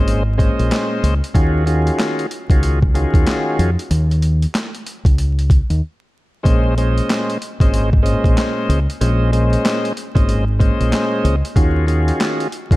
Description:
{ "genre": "hip hop, boom-bap hip-hop", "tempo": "94 BPM", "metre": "4/4", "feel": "swing 62% on 16ths", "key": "Bb minor", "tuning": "A4 = 440 Hz", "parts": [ { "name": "bright tonewheel organ", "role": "accompaniment", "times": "0.0-12.8 s", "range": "Bb2 to Eb5", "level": "-20 LUFS", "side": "equal", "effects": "overdrive, slow rotary speaker, cassette tape, high-pass filter, low-pass filter" }, { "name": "deep dub fingered electric bass", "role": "bass", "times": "0.0-12.8 s", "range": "Ab1 to F2", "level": "-16 LUFS", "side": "equal", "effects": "none" }, { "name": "boom bap sampler-style drum kit", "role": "drums", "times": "0.1-12.8 s", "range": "handclaps, hi-hat, kick drum, snare drum", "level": "-17 LUFS", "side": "equal", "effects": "none" } ], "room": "digital ambience", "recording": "dark, warm production, vinyl crackle", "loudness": "-14 LUFS", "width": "side -18 dB against mid", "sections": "0.0-12.8 A section", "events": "break 5.8-6.5", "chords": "0.0 Bbm11; 1.3 Ebm11; 6.5 Bbm11; 11.6 Ebm11", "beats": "0.07 0.71 | 1.35 1.99 2.62 3.26 | 3.90 4.54 5.18 5.82 | 6.46 7.09 7.73 8.37 | 9.01 9.65 10.29 10.92 | 11.56 12.20" }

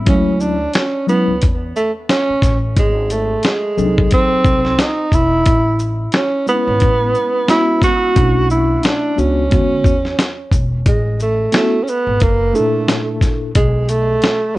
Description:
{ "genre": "hip hop, jazz-hop", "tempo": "89 BPM", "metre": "4/4", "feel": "swing 58% on 16ths", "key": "A major", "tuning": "A4 = 439 Hz", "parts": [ { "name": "mellow tine electric piano", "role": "accompaniment", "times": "0.0-14.6 s", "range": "A#2 to A4", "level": "-19 LUFS", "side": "left 1 dB", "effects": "medium stereo tremolo" }, { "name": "dark tenor saxophone", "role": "melody", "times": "0.1-14.6 s", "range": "G#3 to F#4", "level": "-16 LUFS", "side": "right 2 dB", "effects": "plate reverb, analog delay" }, { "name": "upright bass", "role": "bass", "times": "0.1-14.1 s", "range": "E1 to E2", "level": "-20 LUFS", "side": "equal", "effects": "none" }, { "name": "dusty soul sampler-style drum kit", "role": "drums", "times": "0.1-14.4 s", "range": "hi-hat, kick drum, shaker, snare drum", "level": "-16 LUFS", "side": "equal", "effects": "none" } ], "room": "light reverb", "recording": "cassette tape", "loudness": "-13 LUFS", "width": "side -18 dB against mid", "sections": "0.0-14.6 A section", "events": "none", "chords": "0.1 Dmaj9#11; 2.8 G#7b9; 5.5 Amaj7; 8.2 Bm11; 9.5 E7; 10.9 A69; 12.2 F#7alt; 13.6 B7(no3)", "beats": "| 0.07 0.75 1.42 2.10 | 2.77 3.44 4.12 4.79 | 5.46 6.14 6.81 7.49 | 8.16 8.84 9.51 10.18 | 10.86 11.53 12.21 12.88 | 13.55 14.23" }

